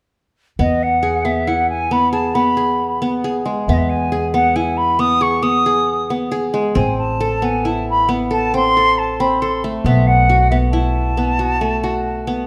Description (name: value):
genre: contemporary instrumental, chamber music in an uneven meter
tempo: 136 BPM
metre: 7/4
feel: straight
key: E major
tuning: A4 = 440 Hz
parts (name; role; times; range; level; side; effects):
- silver concert flute; melody; 0.6-12.4 s; D#5 to D#6; -20 LUFS; equal; none
- qanun; arpeggios; 0.6-12.5 s; G#3 to A4; -21 LUFS; equal; none
- upright bass; bass; 0.6-12.5 s; A1 to E2; -24 LUFS; equal; none
room: moderate scoring stage reverb, RT60 1.8 s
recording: none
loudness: -17 LUFS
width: mono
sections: 0.6-12.5 A section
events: none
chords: 0.6 E; 6.8 Amadd9; 9.9 B7sus4